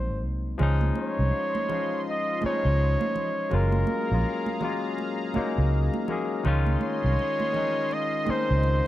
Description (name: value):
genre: R&B, neo-soul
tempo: 82 BPM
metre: 4/4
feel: swing 61% on 16ths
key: Db major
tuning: A4 = 439 Hz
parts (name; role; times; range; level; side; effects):
- warm flugelhorn; melody; 0.0-8.9 s; Bb4 to Eb5; -28 LUFS; equal; none
- barky tine electric piano; accompaniment; 0.0-8.9 s; Eb3 to Ab4; -30 LUFS; left 4 dB; overdrive
- vintage muted fingered electric bass; bass; 0.0-8.8 s; Gb1 to Db2; -24 LUFS; equal; none
- warm analog pad; sustained chords; 1.0-8.9 s; F4 to C6; -37 LUFS; equal; chorus
- congas; percussion; 0.6-8.8 s; none; -34 LUFS; right 6 dB; none
room: small room ambience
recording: dark, warm production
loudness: -23 LUFS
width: side -14 dB against mid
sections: 0.6-8.9 A section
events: none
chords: 0.0 Ab9; 0.6 Dbmaj9; 3.5 Gbmaj9; 6.4 Dbmaj9